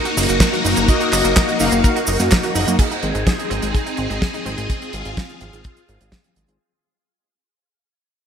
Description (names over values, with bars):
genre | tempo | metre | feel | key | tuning
italo disco | 126 BPM | 4/4 | straight | unclear | A4 = 441 Hz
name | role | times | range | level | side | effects
phased string machine | sustained chords | 0.0-6.6 s | Bb3 to Ab4 | -21 LUFS | left 1 dB | ensemble chorus, phaser, shimmer reverb
analog pluck | arpeggios | 0.1-4.7 s | Ab3 to Bb4 | -26 LUFS | right 3 dB | chorus, cassette tape, digital delay, shimmer reverb
damped 70s drum kit | drums | 0.1-6.6 s | cabasa, crash cymbal, handclaps, hi-hat, snare drum | -22 LUFS | right 1 dB | gated reverb
fat analog bass | bass | 0.2-6.6 s | Gb1 to Gb2 | -24 LUFS | equal | none
kick drum | drums | 0.4-6.2 s | none | -18 LUFS | equal | none
analog synth brass | stabs | 0.9-2.8 s | Bb3 to F5 | -24 LUFS | left 4 dB | chorus, digital delay, shimmer reverb
room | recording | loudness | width
moderate lush hall reverb, RT60 1.8 s, studio ambience | bright 1980s-style digital production | -15 LUFS | side -8 dB against mid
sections
0.0-2.8 A section; 2.8-6.6 B section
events
fade-out 2.8-6.6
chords
0.0 Ebm/Gb; 2.8 Ab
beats
0.41 | 0.89 1.36 1.84 2.31 | 2.79 3.27 3.74 4.22 | 4.70 5.17 5.65 6.12